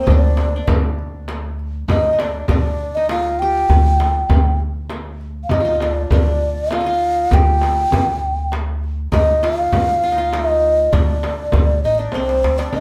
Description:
Arabic maqam ensemble; 100 BPM; 3/4; straight; D maqam kurd; A4 = 440 Hz
breathy mellow round clay ocarina; melody; 0.0-12.8 s; C5 to G5; -20 LUFS; equal
qanun; second line; 0.0-12.8 s; Bb3 to G4; -29 LUFS; equal
upright bass; bass; 0.0-12.8 s; A1 to D2; -22 LUFS; equal
darbuka; percussion; 0.1-12.7 s; -26 LUFS; equal
frame drum; percussion; 0.1-12.8 s; -27 LUFS; equal
moderate studio reverb, RT60 0.9 s; band playing live in one room; -17 LUFS; mono
0.0-12.7 A section
drum fill 12.1-12.7

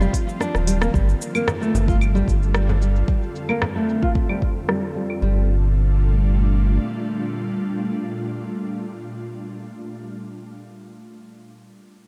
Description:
organic downtempo; 112 BPM; 4/4; straight; G minor; A4 = 439 Hz
oud; melody; 0.0-0.6 s; F4; -41 LUFS; equal
ethereal airy pad; sustained chords; 0.0-9.6 s; F2 to A4; -30 LUFS; equal; ensemble chorus, built-in reverb, sidechain pumping
nylon-string guitar; arpeggios; 0.0-5.5 s; G3 to F4; -27 LUFS; equal; low-pass filter, tape echo
warm sub bass; bass; 0.0-6.8 s; Eb1 to G1; -21 LUFS; equal; tube saturation
afro-pop drum kit; drums; 0.0-5.2 s; cabasa, claves, hi-hat, rim click; -30 LUFS; equal; low-pass filter on perc, low-pass filter on hats, low-pass filter on snare
electronic kick drum; drums; 0.1-4.5 s; -24 LUFS; equal
frame drum; percussion; 1.5-3.7 s; -31 LUFS; equal
light reverb; dark, warm production; -21 LUFS; mono
0.9-5.2 A section; 5.2-9.5 B section
drum fill 0.4-0.9; filter sweep on drum 0.9-5.2; filter sweep on nylon-string guitar 0.9-5.2; filter sweep on ambient pad 0.9-5.2
0.0 F7sus4; 0.9 G7sus2; 3.1 Bbmaj9/F (rootless); 5.2 Gm9

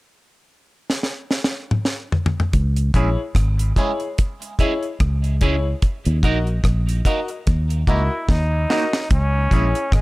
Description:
roots reggae; 73 BPM; 4/4; swing 57% on 16ths; C# dorian; A4 = 441 Hz
deep reggae drum kit; drums; 0.9-10.0 s; hi-hat, kick drum, rim click, snare drum, toms; -19 LUFS; equal
fingered electric bass; bass; 2.5-10.0 s; G#1 to D#2; -19 LUFS; equal
electric guitar at the edge of break-up; accompaniment; 2.9-9.7 s; G#3 to A#4; -28 LUFS; right 5 dB; phaser, tape echo
bright grand piano; stabs; 2.9-9.8 s; E4 to D#5; -27 LUFS; left 4 dB
brilliant trombone; melody; 7.9-10.0 s; G#3 to E4; -24 LUFS; equal; tape echo
small room ambience; -18 LUFS; side -20 dB against mid
0.0-2.5 A section; 2.5-9.1 B section
drum fill 0.9-2.5, 8.3-9.1
0.0 N.C.; 2.5 C#m; 5.8 D#m; 9.1 C#m

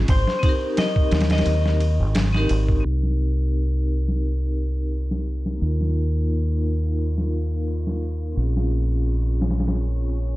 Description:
trip hop; 87 BPM; 4/4; swing 54% on 16ths; C phrygian; A4 = 439 Hz
deep dub fingered electric bass; bass; 0.0-10.4 s; Ab1 to Eb2; -21 LUFS; equal; tube saturation
flickering grainy texture; texture; 0.0-2.9 s; barely audible
electric guitar at the edge of break-up; melody; 0.1-2.7 s; C5 to Eb5; -27 LUFS; left 2 dB; spring reverb, tape echo
boom bap sampler-style drum kit; drums; 0.1-10.4 s; hi-hat, kick drum, ride cymbal, snare drum; -24 LUFS; equal; low-pass filter on cymbals, low-pass filter on snare, low-pass filter on hats, low-pass filter on kick
vibraphone with hard mallets; accompaniment; 0.4-10.4 s; Bb3 to Bb4; -29 LUFS; left 1 dB; tremolo, low-pass filter, tape echo
deep dark ambient pad; sustained chords; 5.4-10.4 s; Bb4 to Eb6; -43 LUFS; left 2 dB; chorus, built-in reverb
digital ambience; dark, warm production, low-pass filter; -20 LUFS; side -18 dB against mid
0.0-2.9 A section; 2.9-10.4 B section
filter sweep on vibraphone 2.9-10.4; filter sweep on ambient pad 2.9-10.4; filter sweep 2.9-10.4
0.1 Abmaj7; 2.9 Cm7; 5.6 Ebsus2; 8.4 Bbm7

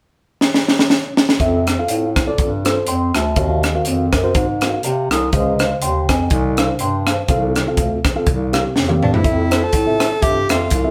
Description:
uptempo gospel; 122 BPM; 4/4; swing 55% on 8ths; F major; A4 = 436 Hz
crisp fusion drum kit; drums; 0.4-10.8 s; hi-hat, kick drum, rim click, snare drum, toms; -20 LUFS; equal
mellow tine electric piano; accompaniment; 1.4-10.9 s; C3 to Eb6; -23 LUFS; equal
mellow bass clarinet; bass; 1.4-10.9 s; C2 to C3; -22 LUFS; equal
breathy tenor saxophone; melody; 9.0-10.9 s; D4 to A4; -22 LUFS; equal
moderate studio reverb, RT60 0.8 s; band playing live in one room; -17 LUFS; mono
0.0-1.4 A section; 1.4-9.2 B section; 9.2-10.9 C section
drum fill 0.4-1.4, 8.8-9.2
0.0 N.C.; 1.4 Fmaj7; 3.4 Ab13/Eb; 5.3 Dbmaj7; 6.3 C9sus4; 7.3 F/C; 8.3 C7sus4; 9.2 Fmaj7

